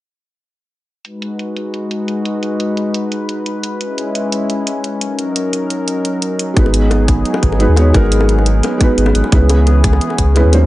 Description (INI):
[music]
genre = liquid drum and bass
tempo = 174 BPM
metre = 4/4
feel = straight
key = G# minor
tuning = A4 = 440 Hz
[part]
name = warm analog pad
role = sustained chords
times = 1.0-10.7 s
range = E3 to B4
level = -19 LUFS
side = left 1 dB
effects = chorus
[part]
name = electronic hi-hat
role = drums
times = 1.0-10.6 s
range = none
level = -22 LUFS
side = right 1 dB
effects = low-pass filter on hats, small room ambience
[part]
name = felt-muted upright piano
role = accompaniment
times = 6.5-10.7 s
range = F#3 to C#5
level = -16 LUFS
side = right 1 dB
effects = digital delay
[part]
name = warm sub bass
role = bass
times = 6.6-10.7 s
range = G#1 to D#2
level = -12 LUFS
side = equal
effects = none
[part]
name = electronic kick drum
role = drums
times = 6.6-10.3 s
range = none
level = -13 LUFS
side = equal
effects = small room ambience
[part]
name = bongos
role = percussion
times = 6.7-10.6 s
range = none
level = -24 LUFS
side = left 4 dB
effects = none
[sound]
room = little or no reverb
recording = dark, warm production, nothing above 10.9 kHz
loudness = -13 LUFS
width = side -16 dB against mid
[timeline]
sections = 1.0-10.7 A section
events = none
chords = 1.0 G#m7; 3.8 C#m7; 5.0 D#m7; 6.6 G#m7; 9.3 C#m7